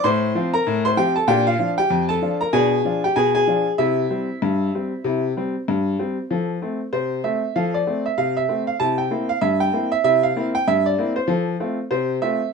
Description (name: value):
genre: ragtime piano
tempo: 96 BPM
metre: 2/4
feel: swing 59% on 16ths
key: F major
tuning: A4 = 435 Hz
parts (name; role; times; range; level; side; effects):
- bright upright piano; solo; 0.0-12.5 s; F2 to C6; -18 LUFS; equal; none
room: wet small room reverb, RT60 0.5 s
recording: dark, warm production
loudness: -18 LUFS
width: side -5 dB against mid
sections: 0.0-6.3 A section; 6.3-12.5 B section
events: none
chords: 0.0 F/A; 1.3 Bb; 2.5 Bdim7; 3.8 C; 6.3 F; 8.8 C7; 11.3 F